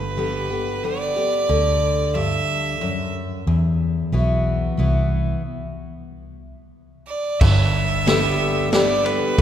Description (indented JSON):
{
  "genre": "honky-tonk and classic country",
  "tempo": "91 BPM",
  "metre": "3/4",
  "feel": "straight",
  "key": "G major",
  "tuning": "A4 = 441 Hz",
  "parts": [
    { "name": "clear fiddle", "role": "melody", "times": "0.0-3.1, 7.1-9.4 s", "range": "B4 to E5", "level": "-23 LUFS", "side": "right 2 dB", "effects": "none" },
    { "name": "picked steel-string acoustic guitar", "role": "accompaniment", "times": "0.0-9.4 s", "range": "E2 to G4", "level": "-23 LUFS", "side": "left 2 dB", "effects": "none" },
    { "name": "vintage muted fingered electric bass", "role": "bass", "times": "0.0-9.4 s", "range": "G1 to E2", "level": "-23 LUFS", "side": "equal", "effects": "none" },
    { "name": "vintage drum kit", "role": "drums", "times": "7.4-9.4 s", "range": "crash cymbal, kick drum, ride cymbal, snare drum", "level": "-21 LUFS", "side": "equal", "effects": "none" }
  ],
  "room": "wet church reverb, RT60 3.5 s",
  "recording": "recorded in a church or concert hall",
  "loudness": "-18 LUFS",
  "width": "side -10 dB against mid",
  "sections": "0.0-7.4 A section; 7.4-9.4 B section",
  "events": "stop 5.4-7.4",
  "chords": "0.0 G; 1.5 D; 3.5 Esus2; 5.4 N.C.; 7.4 G"
}